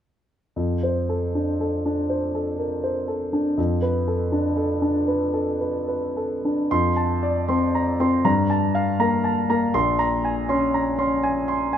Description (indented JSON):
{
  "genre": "classical, impressionist solo piano",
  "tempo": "40 BPM (dotted quarters)",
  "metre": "6/8",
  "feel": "rubato",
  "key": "F major",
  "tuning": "A4 = 440 Hz",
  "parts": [
    { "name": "clear concert grand piano", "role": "solo", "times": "0.6-11.8 s", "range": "Bb1 to C6", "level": "-20 LUFS", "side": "equal", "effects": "none" }
  ],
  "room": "light reverb",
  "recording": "close, detailed microphones",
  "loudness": "-20 LUFS",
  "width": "side -9 dB against mid",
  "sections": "0.6-6.7 A section; 6.7-11.8 B section",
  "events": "none",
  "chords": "0.6 F6; 8.2 Gm9; 9.7 Bbm9"
}